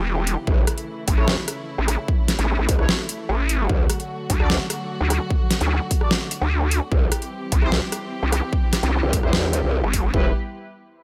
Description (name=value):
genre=heavy wobble dubstep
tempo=149 BPM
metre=4/4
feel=half-time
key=unclear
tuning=A4 = 440 Hz
part: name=dark studio string section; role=sustained chords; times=0.0-10.3 s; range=C#3 to G4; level=-34 LUFS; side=equal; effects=sidechain pumping
part: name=vowel-sweep wobble bass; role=bass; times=0.0-10.1 s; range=E1 to D2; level=-23 LUFS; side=equal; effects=chorus, overdrive
part: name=dubstep drum kit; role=drums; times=0.3-10.0 s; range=hi-hat, rim click, snare drum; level=-26 LUFS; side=equal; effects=overdrive
part: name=growl bass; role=bass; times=0.5-10.3 s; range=E1 to E2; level=-24 LUFS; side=equal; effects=chorus, overdrive
part: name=electronic kick drum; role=drums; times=0.5-10.2 s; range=none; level=-24 LUFS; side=equal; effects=overdrive
part: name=warm brass ensemble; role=stabs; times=1.2-10.3 s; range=E4 to D5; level=-35 LUFS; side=equal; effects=vintage 12-bit sampler grit, dub echo
room=little or no reverb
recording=none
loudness=-22 LUFS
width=mono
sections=0.0-10.1 A section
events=drop 0.0-10.1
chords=0.5 A; 3.7 D; 6.9 C; 10.1 Em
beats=0.07 | 0.47 0.88 1.28 1.68 | 2.08 2.49 2.89 3.29 | 3.69 4.10 4.50 4.90 | 5.30 5.71 6.11 6.51 | 6.92 7.32 7.72 8.12 | 8.53 8.93 9.33 9.73 | 10.14